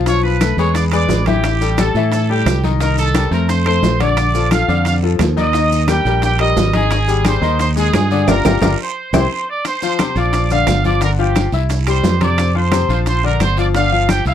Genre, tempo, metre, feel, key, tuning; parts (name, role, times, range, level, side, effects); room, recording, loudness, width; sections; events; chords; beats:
latin, salsa; 176 BPM; 4/4; straight; F major; A4 = 440 Hz
bright concert grand piano; accompaniment; 0.0-14.3 s; C3 to E6; -19 LUFS; left 13 dB
fingered electric bass; bass; 0.0-14.3 s; G1 to A2; -16 LUFS; right 2 dB
bright trumpet section; melody; 0.1-14.3 s; G4 to Eb6; -19 LUFS; right 3 dB
bongos; percussion; 0.1-14.3 s; -24 LUFS; left 6 dB
congas; percussion; 0.1-14.3 s; -23 LUFS; equal
guiro; percussion; 0.1-14.3 s; -33 LUFS; right 16 dB
maracas; percussion; 0.1-14.3 s; -33 LUFS; right 10 dB
timbales; percussion; 0.1-14.3 s; -23 LUFS; right 10 dB
claves; percussion; 0.4-14.3 s; -32 LUFS; left 6 dB
little or no reverb; dry, close 1970s-style studio recording; -13 LUFS; side -10 dB against mid
0.0-9.6 A section; 9.6-14.3 B section
band accent 8.3-9.6; drum fill 9.0-9.6
0.1 Db7b13/Cb; 0.8 E7; 1.4 Am7; 2.8 Cm7; 3.5 F; 4.2 Bbmaj7; 5.5 Eb; 6.9 Abmaj7; 8.3 Gm7; 9.0 C; 9.6 F5; 10.3 Bb; 11.0 Gm7; 11.7 C; 12.4 F5; 13.1 Bb; 13.7 G5
| 0.07 0.41 0.75 1.09 | 1.44 1.78 2.12 2.46 | 2.81 3.15 3.49 3.83 | 4.18 4.52 4.86 5.20 | 5.54 5.89 6.23 6.57 | 6.91 7.25 7.60 7.94 | 8.28 8.62 8.96 9.30 | 9.65 9.99 10.33 10.67 | 11.01 11.36 11.70 12.04 | 12.38 12.72 13.06 13.41 | 13.75 14.09